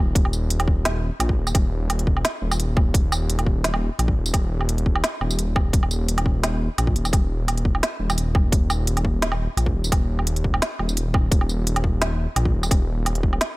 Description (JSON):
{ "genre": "half-time drum and bass", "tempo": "172 BPM", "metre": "4/4", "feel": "swing 53% on 16ths, half-time", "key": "unclear", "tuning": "A4 = 442 Hz", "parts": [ { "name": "dark detuned saw bass", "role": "bass", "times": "0.0-13.4 s", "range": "Eb1 to Bb1", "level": "-23 LUFS", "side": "equal", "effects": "none" }, { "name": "electronic kick drum", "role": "drums", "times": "0.2-13.3 s", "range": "none", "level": "-20 LUFS", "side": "equal", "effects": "overdrive" }, { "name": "organic electronic drum kit", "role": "drums", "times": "0.2-13.5 s", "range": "hi-hat, snare drum, tambourine, woodblock", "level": "-25 LUFS", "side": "right 1 dB", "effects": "none" } ], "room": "digital ambience", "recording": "none", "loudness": "-19 LUFS", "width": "side -21 dB against mid", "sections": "0.0-13.6 A section", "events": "none", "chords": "none", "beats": "| 0.15 0.50 0.85 1.20 | 1.55 1.90 2.25 2.59 | 2.94 3.29 3.64 3.99 | 4.34 4.69 5.04 5.38 | 5.73 6.08 6.43 6.78 | 7.13 7.48 7.83 8.18 | 8.53 8.87 9.22 9.57 | 9.92 10.27 10.62 10.97 | 11.31 11.66 12.01 12.36 | 12.71 13.06 13.41" }